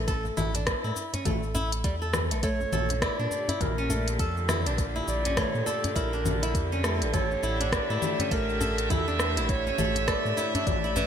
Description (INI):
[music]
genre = organic downtempo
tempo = 102 BPM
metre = 4/4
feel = swing 60% on 16ths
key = A phrygian dominant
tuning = A4 = 436 Hz
[part]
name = round analog bass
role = bass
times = 0.0-11.0 s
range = A1 to Bb2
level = -31 LUFS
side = equal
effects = sidechain pumping
[part]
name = flamenco guitar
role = arpeggios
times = 0.1-11.1 s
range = E3 to A4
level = -32 LUFS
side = equal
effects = ping-pong delay
[part]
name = electronic kick drum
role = drums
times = 0.1-10.8 s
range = none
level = -30 LUFS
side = equal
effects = none
[part]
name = organic electronic drum kit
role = drums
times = 0.1-11.1 s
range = cabasa, congas, hi-hat, rim click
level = -31 LUFS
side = left 1 dB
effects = gated reverb
[part]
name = djembe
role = percussion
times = 0.2-11.1 s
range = none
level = -36 LUFS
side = left 1 dB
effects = none
[part]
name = mellow clarinet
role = melody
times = 2.4-11.1 s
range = A4 to E5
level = -32 LUFS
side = equal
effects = ping-pong delay
[part]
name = rich chamber string section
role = sustained chords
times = 2.4-11.1 s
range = A2 to E5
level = -33 LUFS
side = right 1 dB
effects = sidechain pumping
[sound]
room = moderate lush hall reverb, RT60 2.7 s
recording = bright 1980s-style digital production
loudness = -25 LUFS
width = side -8 dB against mid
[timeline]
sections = 0.0-11.1 A section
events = none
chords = 0.0 A5; 2.4 Bb6; 7.1 A7sus4